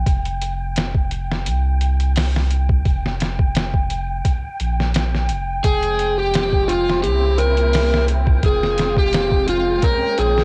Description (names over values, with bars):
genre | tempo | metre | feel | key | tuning
trip hop | 86 BPM | 4/4 | swing 54% on 16ths | F harmonic minor | A4 = 444 Hz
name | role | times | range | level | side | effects
warm sub bass | bass | 0.0-10.4 s | F1 to C2 | -23 LUFS | equal | none
wind-like tuned noise texture | texture | 0.0-10.4 s | G5 | -32 LUFS | equal | built-in reverb, cassette tape
trip hop sampler-style drum kit | drums | 0.1-10.4 s | hi-hat, kick drum, snare drum | -22 LUFS | equal | cassette tape
overdriven slide guitar | melody | 5.6-10.4 s | F4 to Bb4 | -21 LUFS | equal | cassette tape, tape echo
muted studio string section | sustained chords | 5.6-10.4 s | Db3 to G5 | -30 LUFS | equal | cassette tape
room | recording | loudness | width
little or no reverb | home recording on cassette | -19 LUFS | mono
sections
0.0-10.4 A section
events
none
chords
0.1 Fsus2; 1.5 C5; 2.9 Fsus2; 4.2 Bb5; 5.6 Fmadd9; 7.0 C7b9; 8.4 Fmadd9; 9.8 Bbm9